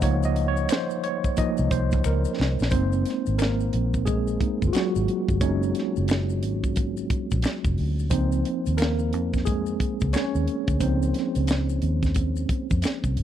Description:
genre	R&B, neo-soul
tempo	89 BPM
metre	4/4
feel	swing 62% on 16ths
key	unclear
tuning	A4 = 440 Hz
part	tine electric piano	accompaniment	0.0-13.2 s	F3 to Bb5	-26 LUFS	right 1 dB	overdrive, medium stereo tremolo
part	vintage muted fingered electric bass	bass	0.0-13.2 s	F1 to F2	-25 LUFS	equal	none
part	tight funk drum kit	drums	0.0-13.2 s	hi-hat, kick drum, snare drum	-26 LUFS	equal	none
part	maracas and finger snaps	percussion	0.0-13.2 s	none	-40 LUFS	left 10 dB	none
room	studio reverb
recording	dry, close 1970s-style studio recording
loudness	-22 LUFS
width	side -10 dB against mid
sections	0.0-2.7 A section; 2.7-13.2 B section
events	tine electric piano solo 0.0-2.7, 2.7-13.2; drum fill 2.0-2.7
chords	0.0 Db69; 2.7 Gb6; 8.1 Db69

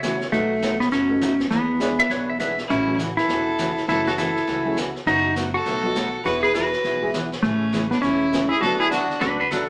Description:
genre	country, western swing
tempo	202 BPM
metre	4/4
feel	swing 62% on 8ths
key	A major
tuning	A4 = 440 Hz
part	clean lap steel guitar	second line	0.0-2.6, 9.2-9.7 s	D4 to E5	-25 LUFS	equal	none
part	picked steel-string acoustic guitar	accompaniment	0.0-9.6 s	B2 to B4	-32 LUFS	equal	none
part	warm upright piano	accompaniment	0.0-8.8 s	E3 to B4	-32 LUFS	equal	none
part	upright bass	bass	0.0-9.7 s	E1 to E2	-38 LUFS	equal	none
part	jazz brush drum kit	drums	0.0-9.7 s	brushed snare drum, hi-hat, snare drum	-34 LUFS	equal	none
part	clean lap steel guitar	melody	0.3-9.2 s	A3 to G#4	-24 LUFS	equal	none
part	clear fiddle	second line	2.7-9.2 s	C#4 to B4	-28 LUFS	equal	none
room	wet studio reverb, RT60 0.7 s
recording	none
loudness	-22 LUFS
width	mono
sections	0.0-9.7 A section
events	none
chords	0.3 B7; 1.5 E7; 2.7 A6; 3.9 F#m7; 5.1 B7/F#; 6.3 E; 7.4 Amaj7; 8.6 D6

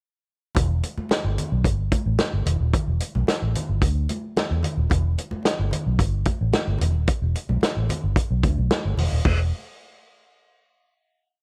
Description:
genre	funk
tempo	110 BPM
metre	4/4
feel	straight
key	unclear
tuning	A4 = 440 Hz
part	congas	percussion	0.5-9.5 s	none	-35 LUFS	equal	none
part	vintage muted fingered electric bass	bass	0.6-9.5 s	D#1 to E2	-25 LUFS	equal	none
part	warm soul drum kit	drums	0.6-9.4 s	crash cymbal, hi-hat, kick drum, snare drum	-26 LUFS	equal	none
room	light reverb, small room ambience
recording	cassette tape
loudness	-23 LUFS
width	mono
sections	0.6-9.2 breakdown; 9.2-11.4 final chord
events	none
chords	none

